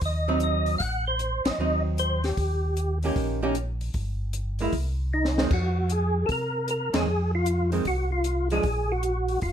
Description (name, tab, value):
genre	soul jazz organ trio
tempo	153 BPM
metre	4/4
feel	swing 66% on 8ths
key	unclear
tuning	A4 = 440 Hz
part	mellow tonewheel organ	bass	0.0-9.5 s	F1 to C3	-27 LUFS	equal	slow rotary speaker
part	compact cocktail drum kit	drums	0.0-9.5 s	crash cymbal, hi-hat, kick drum, ride cymbal, snare drum	-30 LUFS	left 1 dB	none
part	percussive tonewheel organ	melody	0.1-9.5 s	Eb4 to F#5	-27 LUFS	equal	slow rotary speaker, chorus vibrato
part	archtop guitar, miked and amplified	accompaniment	0.3-8.6 s	Eb3 to G4	-28 LUFS	right 3 dB	none
room	light reverb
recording	lossy compression artefacts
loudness	-24 LUFS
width	side -9 dB against mid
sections	0.0-9.5 A section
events	band accent 1.4, 6.9; drum fill 5.1-5.5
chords	0.0 Ab7 (rootless); 0.8 Adim7; 2.4 Eb7; 3.9 Gm6; 4.7 Cm; 5.5 Fm; 8.6 Bb7(no3)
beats	0.02 0.41 | 0.81 1.20 1.59 1.98 | 2.37 2.76 3.15 3.55 | 3.94 4.33 4.72 5.11 | 5.50 5.90 6.29 6.68 | 7.07 7.47 7.86 8.25 | 8.64 9.04 9.43